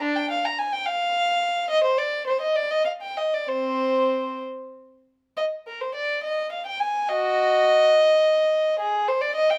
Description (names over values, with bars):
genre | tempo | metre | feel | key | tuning
classical, baroque-style suite movement for unaccompanied violin | 62-73 BPM (dotted quarters) | 6/8 | rubato | C minor | A4 = 440 Hz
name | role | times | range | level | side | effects
dark violin | solo | 0.0-9.6 s | C4 to Bb5 | -23 LUFS | equal | none
room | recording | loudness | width
moderate stone room reverb, RT60 1.1 s | none | -23 LUFS | mono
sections
0.0-5.4 A section; 5.4-9.6 A section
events
none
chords
none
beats
| 0.04 0.87 | 1.71 2.57 | 3.50 4.44 | 5.37 6.24 | 7.08 7.92 | 8.79